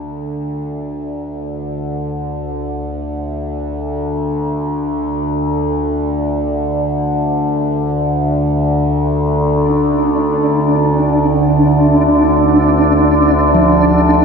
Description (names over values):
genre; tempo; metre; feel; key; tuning
dark ambient drone; free time; none; none; unclear; A4 = 440 Hz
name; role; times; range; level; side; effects
overtone-sweeping drone; drone; 0.0-14.2 s; D2 to D3; -15 LUFS; equal; chorus, built-in reverb
flickering grainy texture; texture; 9.6-14.2 s; D4; -14 LUFS; equal; built-in reverb
quartz singing bowl; arpeggios; 13.5-14.2 s; F3; -15 LUFS; right 3 dB; none
room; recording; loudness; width
wet huge ambient reverb, RT60 7.2 s; cassette tape; -13 LUFS; side -5 dB against mid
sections
0.0-14.2 A section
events
fade-in on synth drone 0.0-14.2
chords
0.0 N.C.; 9.3 Bb/D (rootless)